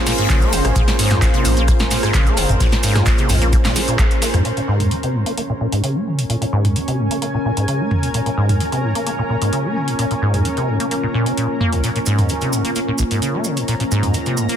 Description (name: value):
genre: acid house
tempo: 130 BPM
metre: 4/4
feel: straight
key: Bb minor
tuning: A4 = 439 Hz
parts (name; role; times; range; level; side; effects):
- dark analog pad; sustained chords; 0.0-14.6 s; Bb3 to Db5; -26 LUFS; equal; chorus, sidechain pumping
- saturated sub bass; bass; 0.0-4.4 s; F1 to F2; -20 LUFS; equal; tube saturation, sidechain pumping
- granular cloud pad; texture; 0.0-14.6 s; Db4 to Bb5; -23 LUFS; equal; built-in reverb, sidechain pumping
- acid bass, saw; riff; 0.1-14.6 s; Bb1 to Bb3; -20 LUFS; equal; tube saturation, wide subtle chorus, ping-pong delay
- electro analog drum machine; drums; 0.1-14.6 s; handclaps, hi-hat, rim click, snare drum, toms; -22 LUFS; equal; none
- oversized low-tuned drum kit; drums; 0.1-4.3 s; hi-hat, shaker, snare drum; -30 LUFS; left 1 dB; sidechain pumping on hats, high-pass filter on hats, high-pass filter on snare, sidechain pumping on perc, high-pass filter on perc, high-pass filter on room
- maracas; percussion; 0.1-4.4, 11.8-14.6 s; none; -28 LUFS; right 4 dB; none
- electronic kick drum; drums; 0.3-4.1 s; none; -18 LUFS; equal; none
room: small room ambience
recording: dense, heavily limited modern master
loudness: -15 LUFS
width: side -9 dB against mid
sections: 0.0-4.5 A section; 4.5-14.6 B section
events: drop 0.0-4.5; band accent 4.0; filter sweep on acid bass 4.5-14.6; filter sweep on analog synth pad 4.5-14.6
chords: 0.0 Bbm7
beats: 0.30 | 0.76 1.22 1.68 2.14 | 2.60 3.07 3.53 3.99 | 4.45 4.91 5.38 5.84 | 6.30 6.76 7.22 7.68 | 8.14 8.61 9.07 9.53 | 9.99 10.45 10.91 11.38 | 11.84 12.30 12.76 13.22 | 13.68 14.14